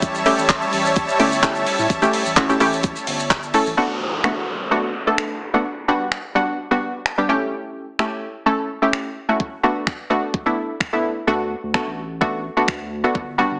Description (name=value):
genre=dance-pop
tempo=128 BPM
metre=4/4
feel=straight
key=D major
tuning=A4 = 440 Hz
part: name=punchy chord stab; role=accompaniment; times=0.0-13.6 s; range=G3 to A4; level=-22 LUFS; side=equal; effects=chorus
part: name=supersaw chords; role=sustained chords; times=0.0-3.7 s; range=G3 to A5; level=-24 LUFS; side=equal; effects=sidechain pumping
part: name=saturated sub bass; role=bass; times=0.0-3.7, 11.3-13.6 s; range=G1 to A2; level=-33 LUFS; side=equal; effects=sidechain pumping
part: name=clean 12-bit digital drum machine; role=drums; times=0.0-13.3 s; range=finger snaps, handclaps, hi-hat, kick drum, shaker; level=-24 LUFS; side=equal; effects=none
part: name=tube shaker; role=percussion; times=0.0-3.8 s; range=none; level=-46 LUFS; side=equal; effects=none
part: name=downlifter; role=sound effects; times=3.8-7.5 s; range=none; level=-31 LUFS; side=equal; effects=none
room=moderate digital room reverb, RT60 0.9 s, digital ambience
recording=heavily compressed radio sound, multiband compression, small speaker sound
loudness=-21 LUFS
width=mono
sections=0.0-3.8 A section; 3.8-13.6 B section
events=kick muted 11.3-11.7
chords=0.0 A7; 3.8 D6; 5.7 Gmaj7; 7.3 A7; 9.4 Bm7; 11.3 D6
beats=| 0.03 0.49 0.96 1.43 | 1.90 2.37 2.84 3.31 | 3.77 4.24 4.71 5.18 | 5.65 6.12 6.59 7.06 | 7.53 7.99 8.46 8.93 | 9.40 9.87 10.34 10.81 | 11.28 11.74 12.21 12.68 | 13.15